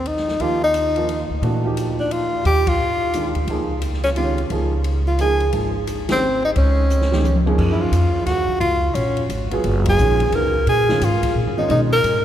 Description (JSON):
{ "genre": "modal jazz", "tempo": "175 BPM", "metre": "3/4", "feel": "swing 64% on 8ths", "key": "F# major from 7.6 s", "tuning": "A4 = 439 Hz", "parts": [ { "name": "clear tenor saxophone", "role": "melody", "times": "0.0-12.2 s", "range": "C4 to A#4", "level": "-20 LUFS", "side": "equal", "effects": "none" }, { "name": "upright bass", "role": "bass", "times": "0.0-12.2 s", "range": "F#1 to B2", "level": "-21 LUFS", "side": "equal", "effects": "none" }, { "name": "open jazz drum kit", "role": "drums", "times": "0.1-12.1 s", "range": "crash cymbal, hi-hat, kick drum, ride cymbal, snare drum, toms", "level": "-29 LUFS", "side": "left 2 dB", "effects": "none" }, { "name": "warm baby grand piano", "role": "accompaniment", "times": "0.4-11.9 s", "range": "Gb2 to Ab4", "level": "-26 LUFS", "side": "right 2 dB", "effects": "none" } ], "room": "wet cathedral reverb, RT60 5.2 s", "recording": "recorded in a church or concert hall", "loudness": "-17 LUFS", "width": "side -11 dB against mid", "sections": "0.0-7.6 A section; 7.6-12.2 B section", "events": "band accent 2.6, 6.0, 9.8; drum fill 6.9-7.6", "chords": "0.0 Ebmaj9; 3.5 Dbadd9; 7.6 F#maj9; 11.7 Bmaj9", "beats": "0.06 | 0.40 0.74 1.09 | 1.43 1.77 2.11 | 2.45 2.80 3.14 | 3.48 3.82 4.16 | 4.51 4.85 5.19 | 5.53 5.88 6.22 | 6.56 6.90 7.25 | 7.59 7.93 8.27 | 8.62 8.96 9.30 | 9.64 9.98 10.33 | 10.67 11.01 11.36 | 11.70 12.04" }